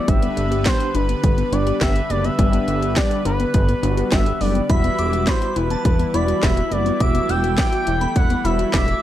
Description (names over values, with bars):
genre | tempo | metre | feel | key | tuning
synth-pop | 104 BPM | 4/4 | straight | G major | A4 = 439 Hz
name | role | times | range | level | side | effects
expressive portamento lead | melody | 0.0-9.0 s | B4 to G5 | -24 LUFS | equal | chorus
lush unison pad | sustained chords | 0.0-9.0 s | D3 to B4 | -29 LUFS | right 1 dB | chorus
soft round pluck | arpeggios | 0.0-9.0 s | G3 to G5 | -28 LUFS | left 7 dB | chorus, tape echo
mellow synth brass | accompaniment | 0.1-8.9 s | G3 to G4 | -26 LUFS | right 1 dB | chorus
chorused synth bass | bass | 0.1-8.9 s | E1 to G1 | -22 LUFS | equal | none
house drum kit | drums | 0.1-9.0 s | handclaps, hi-hat, kick drum, snare drum | -20 LUFS | equal | none
shimmering bell with halo | second line | 4.7-9.0 s | A5 to E6 | -30 LUFS | equal | ensemble chorus, tape echo
room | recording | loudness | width
digital ambience | dark, warm production | -16 LUFS | side -12 dB against mid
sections
0.0-9.0 A section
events
none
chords
0.1 G; 4.7 Emadd9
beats
| 0.08 0.66 1.24 1.81 | 2.39 2.97 3.54 4.12 | 4.70 5.27 5.85 6.43 | 7.00 7.58 8.16 8.73